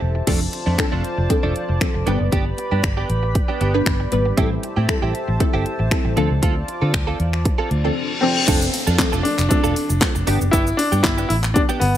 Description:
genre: dance-pop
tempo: 117 BPM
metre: 4/4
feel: straight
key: unclear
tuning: A4 = 440 Hz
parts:
  - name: wide unison pluck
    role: accompaniment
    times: 0.0-12.0 s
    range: F3 to B4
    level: -25 LUFS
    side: left 1 dB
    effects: ensemble chorus, sidechain pumping
  - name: chorused pulse-width pad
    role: sustained chords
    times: 0.0-8.5 s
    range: F4 to B5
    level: -28 LUFS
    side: right 1 dB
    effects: sidechain pumping
  - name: direct-recorded clean electric guitar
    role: riff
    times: 0.0-12.0 s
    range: F3 to A4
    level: -27 LUFS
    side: right 5 dB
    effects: analog chorus
  - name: vintage muted fingered electric bass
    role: bass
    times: 0.0-12.0 s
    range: E1 to D3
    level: -21 LUFS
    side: equal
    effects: sidechain pumping
  - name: pop drum kit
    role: drums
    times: 0.3-12.0 s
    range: crash cymbal, finger snaps, handclaps, hi-hat, kick drum, shaker, snare drum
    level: -20 LUFS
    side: equal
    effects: none
  - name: reverse cymbal and downlifter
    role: sound effects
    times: 7.7-12.0 s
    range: none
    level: -26 LUFS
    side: left 2 dB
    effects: none
  - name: warm grand piano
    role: melody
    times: 8.2-12.0 s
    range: B3 to E4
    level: -21 LUFS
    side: left 1 dB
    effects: none
room: light reverb, digital ambience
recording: none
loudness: -17 LUFS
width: side -11 dB against mid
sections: 0.3-8.5 A section; 8.5-12.0 B section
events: reverse cymbal 7.7-8.5; drums muted 8.0-8.5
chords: 0.3 F6; 2.1 G; 4.4 Am7; 6.2 Dm7; 8.5 F6; 10.3 G

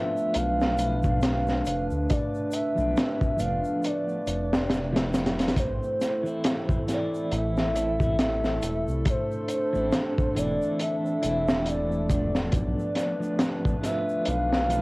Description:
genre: trip hop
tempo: 69 BPM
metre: 4/4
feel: swing 58% on 16ths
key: A minor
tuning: A4 = 440 Hz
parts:
  - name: pure breathy sine lead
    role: melody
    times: 0.0-14.8 s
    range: C5 to F5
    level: -29 LUFS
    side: equal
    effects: analog chorus, cassette tape, tape echo
  - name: clean electric guitar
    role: accompaniment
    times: 0.0-14.8 s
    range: E3 to A4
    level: -32 LUFS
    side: equal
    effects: tremolo, cassette tape
  - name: dark analog pad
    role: sustained chords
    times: 0.0-14.8 s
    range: A3 to B4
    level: -31 LUFS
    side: equal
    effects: chorus, vintage 12-bit sampler grit, cassette tape
  - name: tube shaker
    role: percussion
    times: 0.2-14.8 s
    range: none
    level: -51 LUFS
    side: left 1 dB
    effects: none
  - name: crunchy breakbeat drum kit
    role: drums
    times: 0.3-14.8 s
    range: hi-hat, kick drum, snare drum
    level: -27 LUFS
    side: equal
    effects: cassette tape
  - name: dark detuned saw bass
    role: bass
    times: 0.4-14.8 s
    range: E1 to D2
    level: -30 LUFS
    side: equal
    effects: none
room: small room ambience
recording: home recording on cassette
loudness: -23 LUFS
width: side -23 dB against mid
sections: 0.0-14.8 A section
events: none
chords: 0.0 Bm7b5; 5.6 Am; 12.5 Bm7b5

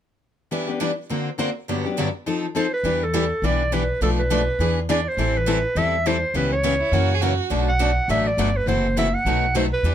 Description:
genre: acoustic string swing (jazz manouche)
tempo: 206 BPM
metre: 4/4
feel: swing 57% on 8ths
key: E minor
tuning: A4 = 440 Hz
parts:
  - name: picked steel-string acoustic guitar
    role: accompaniment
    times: 0.5-9.9 s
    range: G2 to C5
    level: -25 LUFS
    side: left 5 dB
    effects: none
  - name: picked steel-string acoustic guitar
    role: accompaniment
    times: 0.5-9.9 s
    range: G2 to B4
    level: -28 LUFS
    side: right 4 dB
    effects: none
  - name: breathy clarinet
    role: melody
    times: 2.6-9.9 s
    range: A4 to F#5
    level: -23 LUFS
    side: right 2 dB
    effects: none
  - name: upright bass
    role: bass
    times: 2.8-9.9 s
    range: F#1 to F#2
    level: -23 LUFS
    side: equal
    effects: none
  - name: warm violin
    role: second line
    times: 6.8-7.6 s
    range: E4 to G#4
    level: -27 LUFS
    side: right 8 dB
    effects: none
room: light reverb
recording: close, detailed microphones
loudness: -19 LUFS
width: side -10 dB against mid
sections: 0.5-2.8 A section; 2.8-9.9 B section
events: none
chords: 0.5 Em7; 1.1 Daug7; 1.7 Gmaj7; 2.3 F7; 2.8 Em7; 4.0 Bm7b5; 4.6 E7; 5.2 Am9; 6.3 C#m7b5; 6.9 F#7; 7.5 Bm7; 8.7 F#m7b5; 9.3 B7

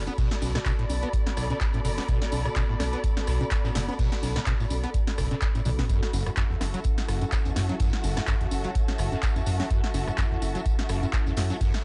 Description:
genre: acid house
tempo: 126 BPM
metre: 4/4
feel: swing 55% on 16ths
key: F# minor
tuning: A4 = 440 Hz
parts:
  - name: warbly tape-like pad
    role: sustained chords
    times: 0.0-11.8 s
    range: F#3 to D5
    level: -40 LUFS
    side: equal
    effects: chorus, built-in reverb, phaser, sidechain pumping
  - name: round analog bass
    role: bass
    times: 0.0-11.5 s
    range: F#1 to F#2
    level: -32 LUFS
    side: equal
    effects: sidechain pumping
  - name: muted studio string section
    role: texture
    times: 0.0-11.8 s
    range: F#4 to B5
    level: -38 LUFS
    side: equal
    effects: sidechain pumping
  - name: acid bass, saw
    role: riff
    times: 0.1-11.7 s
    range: F#1 to B3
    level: -33 LUFS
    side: equal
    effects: overdrive, ensemble chorus, sidechain pumping
  - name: cloth-damped thuddy drum kit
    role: drums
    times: 0.1-11.7 s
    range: hi-hat, shaker, snare drum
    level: -50 LUFS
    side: equal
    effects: none
  - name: electro analog drum machine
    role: drums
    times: 0.1-11.8 s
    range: congas, handclaps, hi-hat, rim click, snare drum, toms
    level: -36 LUFS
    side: equal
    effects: none
  - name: tambourine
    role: percussion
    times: 0.1-11.8 s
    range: none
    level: -48 LUFS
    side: equal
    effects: none
  - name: electronic kick drum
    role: drums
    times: 0.2-11.7 s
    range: none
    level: -29 LUFS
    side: equal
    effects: none
room: studio ambience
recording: dry, gritty hardware recording, cassette tape, nothing above 10.5 kHz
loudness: -26 LUFS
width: mono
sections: 0.0-11.8 A section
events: drum fill 5.7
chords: 0.0 Bm7; 5.9 F#m7

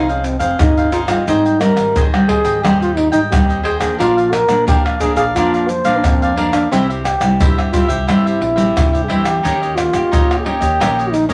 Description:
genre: samba and choro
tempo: 88 BPM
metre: 4/4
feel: straight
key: unclear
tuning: A4 = 441 Hz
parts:
  - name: breathy trombone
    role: melody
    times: 0.0-11.3 s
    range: C4 to C5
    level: -19 LUFS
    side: equal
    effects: none
  - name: cavaquinho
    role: accompaniment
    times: 0.0-11.3 s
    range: D4 to G5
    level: -23 LUFS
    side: equal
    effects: none
  - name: nylon-string guitar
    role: accompaniment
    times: 0.0-11.3 s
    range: G2 to Ab4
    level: -22 LUFS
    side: equal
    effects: none
  - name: upright bass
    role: bass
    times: 0.0-11.3 s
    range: F1 to G2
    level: -27 LUFS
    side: equal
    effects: none
  - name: egg shaker, pandeiro, surdo and tamborim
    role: percussion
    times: 0.1-11.3 s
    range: none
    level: -21 LUFS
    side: equal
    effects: none
room: wet studio reverb, RT60 0.6 s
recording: vinyl crackle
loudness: -15 LUFS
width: mono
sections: 0.0-11.3 A section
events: none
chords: 0.0 Fm7; 1.3 Abmaj7; 4.0 Bb; 6.7 C; 9.4 Eb7

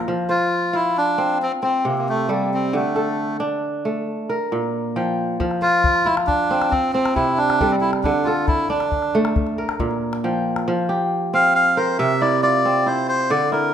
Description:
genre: west african traditional, West African string and xylophone music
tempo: 91 BPM (dotted quarters)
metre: 12/8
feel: straight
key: F major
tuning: A4 = 440 Hz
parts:
  - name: kora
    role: arpeggios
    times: 0.0-13.7 s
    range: Bb2 to G5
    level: -21 LUFS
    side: equal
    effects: none
  - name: melodica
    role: melody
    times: 0.3-13.7 s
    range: A3 to F5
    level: -19 LUFS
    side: equal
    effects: none
  - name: calabash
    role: percussion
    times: 5.4-10.7 s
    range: none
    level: -27 LUFS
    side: left 2 dB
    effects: none
room: moderate recital hall reverb, RT60 1.7 s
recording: minimal, uncompressed stereo recording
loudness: -18 LUFS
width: side -9 dB against mid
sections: 0.1-10.7 A section; 10.7-13.7 B section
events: none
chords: 0.1 F5; 1.4 C5; 2.7 D5; 4.1 Bb5; 5.4 F5; 6.7 C5; 8.0 D5; 9.4 Bb5; 10.7 F5; 12.0 C

